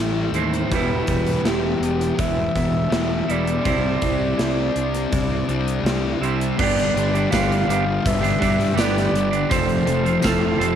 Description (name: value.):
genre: rock, shoegaze and dream pop.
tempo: 82 BPM.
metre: 4/4.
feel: straight.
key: G mixolydian from 6.6 s.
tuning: A4 = 440 Hz.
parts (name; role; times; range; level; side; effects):
direct-recorded clean electric guitar; arpeggios; 0.0-10.8 s; F3 to G4; -32 LUFS; right 10 dB; lush chorus, tape echo.
crunchy overdriven guitar; riff; 0.0-10.8 s; A2 to A4; -25 LUFS; right 10 dB; reverse reverb.
thick fuzz guitar; riff; 0.0-10.8 s; E2 to C4; -24 LUFS; left 8 dB; distortion, analog chorus.
fuzz fingered electric bass; bass; 0.0-10.8 s; E1 to G2; -25 LUFS; equal; overdrive.
gated 80s drum kit; drums; 0.3-10.8 s; crash cymbal, hi-hat, kick drum, snare drum; -25 LUFS; equal; cassette tape.
breathy flute-like synth lead; melody; 0.7-10.8 s; G4 to F5; -26 LUFS; equal; chorus, cassette tape, tape echo.
tambourine; percussion; 7.3-10.4 s; none; -35 LUFS; left 9 dB; none.
room: light reverb.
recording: home recording on cassette.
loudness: -18 LUFS.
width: side -9 dB against mid.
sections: 0.0-6.6 A section; 6.6-10.8 B section.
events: none.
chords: 0.0 Am7; 0.7 Em; 3.6 Cadd9; 6.6 G; 9.5 F.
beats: | 0.71 1.45 2.18 2.91 | 3.65 4.38 5.11 5.85 | 6.58 7.31 8.04 8.78 | 9.51 10.24.